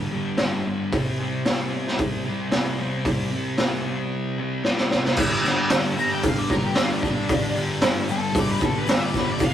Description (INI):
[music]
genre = garage rock duo or trio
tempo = 113 BPM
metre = 4/4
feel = straight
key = unclear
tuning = A4 = 439 Hz
[part]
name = fuzz guitar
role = riff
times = 0.0-9.5 s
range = F2 to C4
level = -25 LUFS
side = equal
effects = distortion
[part]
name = raw garage drum kit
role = drums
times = 0.4-9.5 s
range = crash cymbal, hi-hat, kick drum, snare drum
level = -22 LUFS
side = equal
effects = none
[part]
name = tube shaker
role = percussion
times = 5.2-9.5 s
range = none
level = -46 LUFS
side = right 5 dB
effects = none
[part]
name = octave-fuzz lead guitar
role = melody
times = 6.0-9.5 s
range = D4 to Bb5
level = -27 LUFS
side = left 2 dB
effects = distortion
[sound]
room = moderate small room ambience, RT60 0.5 s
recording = rough rehearsal-room recording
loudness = -20 LUFS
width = side -10 dB against mid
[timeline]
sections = 0.0-5.2 A section; 5.2-9.5 B section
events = drum fill 4.7-5.2; lead electric guitar solo 5.2-9.5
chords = 0.0 G5; 0.9 C5; 5.2 G5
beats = 0.39 | 0.93 1.46 1.99 2.53 | 3.06 3.59 4.12 4.66 | 5.19 5.72 6.25 6.77 | 7.30 7.83 8.36 8.88 | 9.41